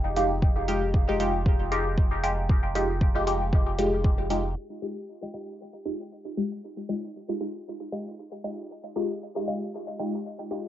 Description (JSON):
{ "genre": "dub techno", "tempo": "116 BPM", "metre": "4/4", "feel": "swing 56% on 16ths", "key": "F minor", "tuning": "A4 = 440 Hz", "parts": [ { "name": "warm sub bass", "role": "bass", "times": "0.0-4.5 s", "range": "F1", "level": "-30 LUFS", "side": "equal", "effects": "sidechain pumping" }, { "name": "filtered dub chord stab", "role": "stabs", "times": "0.2-10.6 s", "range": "Ab3 to G4", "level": "-28 LUFS", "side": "left 1 dB", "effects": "phaser, sidechain pumping, cassette tape, dub echo" }, { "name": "electronic hi-hat", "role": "drums", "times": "0.2-10.6 s", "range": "none", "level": "-41 LUFS", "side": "equal", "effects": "cassette tape" }, { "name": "electronic kick drum", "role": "drums", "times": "0.4-4.2 s", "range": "none", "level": "-23 LUFS", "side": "equal", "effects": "cassette tape" } ], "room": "light reverb, digital ambience", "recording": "home recording on cassette, low-pass filter, nothing above 7.7 kHz", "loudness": "-25 LUFS", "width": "side -12 dB against mid", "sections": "0.0-4.6 A section; 4.6-10.7 B section", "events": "filter sweep 4.6-10.7", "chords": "0.0 Fm9" }